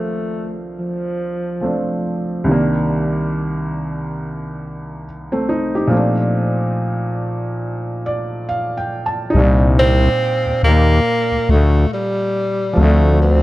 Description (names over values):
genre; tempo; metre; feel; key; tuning
lo-fi hip hop; 70 BPM; 4/4; swing 61% on 16ths; C dorian; A4 = 440 Hz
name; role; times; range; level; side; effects
breathy tenor saxophone; melody; 0.0-2.0, 9.8-13.4 s; F3 to C4; -18 LUFS; equal; low-pass filter, plate reverb
felt-muted upright piano; accompaniment; 0.0-13.4 s; C2 to A5; -19 LUFS; equal; cassette tape, low-pass filter
growling FM bass; bass; 9.3-13.4 s; C2 to Eb2; -12 LUFS; left 1 dB; none
room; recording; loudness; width
moderate small room reverb, RT60 0.5 s; dark, warm production; -15 LUFS; side -17 dB against mid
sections
0.0-9.3 A section; 9.3-13.4 B section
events
filter sweep 0.0-9.3; felt piano fill 7.6-9.3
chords
0.0 Dm7; 2.5 Cm9; 5.9 Bbmaj7; 9.3 Cm9; 12.8 Dm7